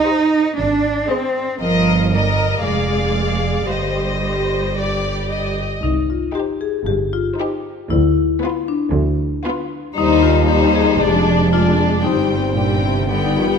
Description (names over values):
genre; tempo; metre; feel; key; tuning
cinematic, playful, whimsical film cue; 115 BPM; 4/4; straight; C minor; A4 = 441 Hz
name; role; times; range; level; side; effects
rich chamber cello section; bass; 0.0-13.4 s; C2 to Eb4; -20 LUFS; right 3 dB; none
rich chamber violin section; melody; 0.1-13.6 s; B4 to G5; -26 LUFS; left 4 dB; none
rich chamber violin section; second line; 0.1-13.6 s; B3 to Eb5; -22 LUFS; left 5 dB; none
clear studio viola section; accompaniment; 0.1-13.6 s; G3 to Bb4; -24 LUFS; left 1 dB; none
rich studio double bass section; bass; 0.6-13.6 s; F1 to Eb2; -21 LUFS; right 3 dB; none
marimba with medium hard mallets; melody; 5.8-13.6 s; D4 to Ab4; -20 LUFS; left 9 dB; none
room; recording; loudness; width
moderate scoring stage reverb, RT60 2.0 s; none; -15 LUFS; side -6 dB against mid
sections
0.0-5.8 A section; 5.8-13.6 B section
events
none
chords
0.0 Cm; 0.6 Ab; 1.6 Eb/G; 2.6 Ddim/F; 3.7 Cm/G; 5.8 Cm; 7.9 Bdim/D; 10.0 Cm/Eb; 11.0 Ddim/F; 12.1 Gsus4